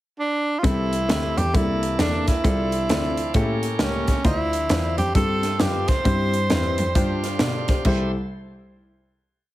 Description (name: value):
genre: uptempo gospel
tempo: 133 BPM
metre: 4/4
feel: swing 62% on 8ths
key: C major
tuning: A4 = 440 Hz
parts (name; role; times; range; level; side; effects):
- breathy tenor saxophone; melody; 0.2-7.2 s; C#4 to C5; -25 LUFS; right 2 dB; none
- clear grand piano; accompaniment; 0.6-8.1 s; C2 to D5; -27 LUFS; left 3 dB; none
- bright tonewheel organ; sustained chords; 0.6-8.1 s; E3 to C5; -33 LUFS; right 3 dB; overdrive, stopped rotary speaker
- clear cello; bass; 0.6-8.1 s; C2 to B2; -25 LUFS; equal; none
- crisp fusion drum kit; drums; 0.6-8.0 s; crash cymbal, hi-hat, kick drum, snare drum; -23 LUFS; equal; none
room: light reverb, small room ambience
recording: heavily compressed radio sound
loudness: -19 LUFS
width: side -15 dB against mid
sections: 0.0-0.6 pickup bar; 0.6-7.9 verse; 7.9-9.5 final chord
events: none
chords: 0.0 N.C.; 0.6 C6; 1.5 C13; 2.4 F6/C; 3.3 A7b9; 4.2 Dm9; 5.2 G9sus4; 6.1 C/G; 7.0 G7sus4; 7.9 C6